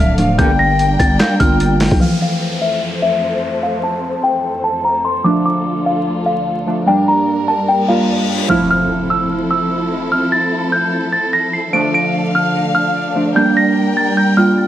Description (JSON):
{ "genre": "hip hop, trap", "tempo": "148 BPM", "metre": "4/4", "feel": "half-time", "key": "F major", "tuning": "A4 = 441 Hz", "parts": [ { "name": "small celesta", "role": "melody", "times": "0.0-14.7 s", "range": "E5 to D7", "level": "-17 LUFS", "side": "left 1 dB", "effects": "low-pass filter, digital delay" }, { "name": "breathy mellow jazz flute", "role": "second line", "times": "0.0-2.0 s", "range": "E5 to G5", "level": "-21 LUFS", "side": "left 4 dB", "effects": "digital delay" }, { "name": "glassy digital keys", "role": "accompaniment", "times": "0.0-14.7 s", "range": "E3 to F4", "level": "-18 LUFS", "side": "right 1 dB", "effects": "chorus, low-pass filter" }, { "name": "dark studio string section", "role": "sustained chords", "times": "0.0-14.7 s", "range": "D2 to G5", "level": "-21 LUFS", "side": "left 1 dB", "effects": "low-pass filter" }, { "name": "growling 808-style bass", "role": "bass", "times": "0.0-2.0 s", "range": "D1 to Bb1", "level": "-16 LUFS", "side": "equal", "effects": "none" }, { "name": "boom bap sampler-style drum kit", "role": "drums", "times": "0.2-2.0 s", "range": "handclaps, hi-hat, kick drum, snare drum", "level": "-15 LUFS", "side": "equal", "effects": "none" }, { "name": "warm brass ensemble", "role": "stabs", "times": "0.4-0.5 s", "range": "Bb1 to D3", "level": "-24 LUFS", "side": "right 2 dB", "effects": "none" }, { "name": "downlifter, reverse cymbal and impact", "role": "sound effects", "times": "2.0-10.1 s", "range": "none", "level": "-26 LUFS", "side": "left 1 dB", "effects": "none" } ], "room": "light reverb, studio reverb", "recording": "vinyl crackle", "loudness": "-13 LUFS", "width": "side -12 dB against mid", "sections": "0.0-2.0 A section; 2.0-8.5 B section; 8.5-14.7 A section", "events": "filter sweep 2.0-8.5; reverse cymbal 7.8-8.5; impact 8.5-10.1", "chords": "0.4 Gm; 2.0 Fmaj7; 5.3 Dm; 6.9 Gm; 8.5 Fmaj7; 11.7 Dm; 13.4 Gm" }